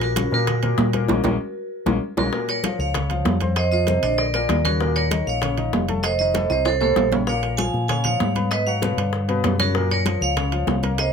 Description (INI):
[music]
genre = latin, salsa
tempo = 194 BPM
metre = 4/4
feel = straight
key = Bb minor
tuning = A4 = 445 Hz
[part]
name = vibraphone with hard mallets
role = melody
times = 0.0-11.1 s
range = Gb4 to Ab5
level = -23 LUFS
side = right 2 dB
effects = plate reverb
[part]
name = clear concert grand piano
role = accompaniment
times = 0.0-11.1 s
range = A2 to C6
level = -27 LUFS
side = left 4 dB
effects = none
[part]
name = fingered electric bass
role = bass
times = 0.0-11.1 s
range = F1 to Bb2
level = -24 LUFS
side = equal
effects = none
[part]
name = bongos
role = percussion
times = 0.0-11.1 s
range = none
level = -30 LUFS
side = left 7 dB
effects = none
[part]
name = congas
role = percussion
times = 0.0-11.1 s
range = none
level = -28 LUFS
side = left 3 dB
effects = none
[part]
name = timbales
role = percussion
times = 0.0-11.1 s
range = none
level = -27 LUFS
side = right 8 dB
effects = none
[sound]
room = light reverb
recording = close, detailed microphones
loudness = -19 LUFS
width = side -6 dB against mid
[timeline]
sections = 0.0-2.3 A section; 2.3-11.1 B section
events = band accent 1.1-2.3; drum fill 1.6-2.3, 6.5-7.3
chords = 0.0 Bbm7; 2.3 Gbmaj7 (rootless); 3.6 F5; 4.2 Bb; 4.8 Eb7sus2; 6.0 F7; 7.3 Bbm7; 8.5 Abm7; 9.1 G7; 9.8 Gbmaj7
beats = 0.17 0.48 0.79 | 1.09 1.40 1.71 2.02 | 2.33 2.64 2.95 3.26 | 3.57 3.88 4.18 4.49 | 4.80 5.11 5.42 5.73 | 6.04 6.35 6.66 6.97 | 7.28 7.58 7.89 8.20 | 8.51 8.82 9.13 9.44 | 9.75 10.06 10.37 10.68 | 10.99